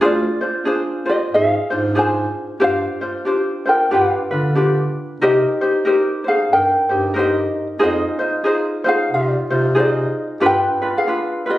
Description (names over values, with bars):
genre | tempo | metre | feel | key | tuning
Hawaiian | 92 BPM | 4/4 | swing 62% on 8ths | C minor | A4 = 439 Hz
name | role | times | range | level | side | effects
ukulele | melody | 0.0-11.6 s | F4 to Ab5 | -19 LUFS | equal | none
ukulele | accompaniment | 0.0-11.6 s | D4 to C5 | -19 LUFS | left 1 dB | none
mellow bass clarinet | bass | 0.0-10.7 s | D2 to D3 | -22 LUFS | right 1 dB | none
room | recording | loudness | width
moderate studio reverb, RT60 0.6 s | recorded on a phone in the room, studio reverb, compression | -16 LUFS | side -15 dB against mid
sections
0.0-11.6 A section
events
none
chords
0.0 Dm7b5; 2.6 G7sus4; 3.9 G7; 5.2 Cm7; 7.8 Fm7; 10.4 G7